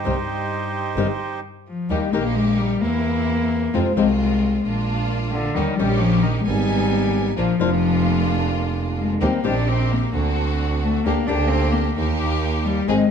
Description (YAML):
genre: tango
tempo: 131 BPM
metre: 4/4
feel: rubato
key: Eb major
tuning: A4 = 440 Hz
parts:
  - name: bandoneon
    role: melody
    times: 0.0-1.4 s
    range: Eb4 to C5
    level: -26 LUFS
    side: right 5 dB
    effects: none
  - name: warm cello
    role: second line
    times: 0.0-13.1 s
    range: G2 to D4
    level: -22 LUFS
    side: left 4 dB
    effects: none
  - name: clear double bass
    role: bass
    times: 0.0-13.1 s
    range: F1 to F2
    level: -22 LUFS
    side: right 3 dB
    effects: none
  - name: flamenco guitar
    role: accompaniment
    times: 0.1-13.1 s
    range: C3 to Ab4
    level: -23 LUFS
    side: left 6 dB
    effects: none
  - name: clear symphonic string section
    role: stabs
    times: 1.9-13.1 s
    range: Ab3 to Ab5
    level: -27 LUFS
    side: right 2 dB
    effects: none
room: light reverb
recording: dark, warm production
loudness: -18 LUFS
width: side -7 dB against mid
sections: 0.0-1.9 A section; 1.9-13.1 B section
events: cello solo 1.9-13.1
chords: 0.0 Cm; 1.9 Eb; 2.8 C7/E; 3.7 Fm; 4.6 Bb; 5.6 Eb7; 6.5 Abm; 7.4 Bb; 9.2 Eb6; 10.1 D7; 11.1 Gm/D; 12.0 Eb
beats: | 0.05 0.51 0.97 1.43 | 1.90 2.36 2.82 3.28 | 3.73 4.19 4.64 5.10 | 5.55 6.01 6.46 6.92 | 7.37 7.83 8.28 8.75 | 9.21 9.67 10.13 10.59 | 11.05 11.51 11.96 12.42 | 12.87